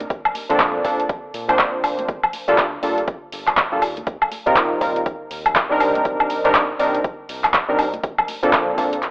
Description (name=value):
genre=deep house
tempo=121 BPM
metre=4/4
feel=swing 60% on 16ths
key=unclear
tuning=A4 = 437 Hz
part: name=round analog bass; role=bass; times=0.0-9.1 s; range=F1 to Bb2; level=-37 LUFS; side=equal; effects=sidechain pumping
part: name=deep house drum kit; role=drums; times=0.0-9.1 s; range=handclaps, hi-hat, woodblock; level=-19 LUFS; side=equal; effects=overdrive, small room ambience
part: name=congas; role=percussion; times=0.0-8.4 s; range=none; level=-40 LUFS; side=equal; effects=none
part: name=electronic kick drum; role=drums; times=0.1-8.9 s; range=none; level=-24 LUFS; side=equal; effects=overdrive, small room ambience
part: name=warm analog keys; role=stabs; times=0.5-9.0 s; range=F3 to C5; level=-20 LUFS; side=equal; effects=chorus, vintage 12-bit sampler grit, sidechain pumping, analog delay
room=light reverb, digital ambience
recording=dry, gritty hardware recording, telephone sound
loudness=-17 LUFS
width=side -27 dB against mid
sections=0.0-9.1 A section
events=none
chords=0.1 Bbmaj9; 2.1 Gm9; 3.8 Eb69; 5.8 Cm9; 8.0 Bbmaj9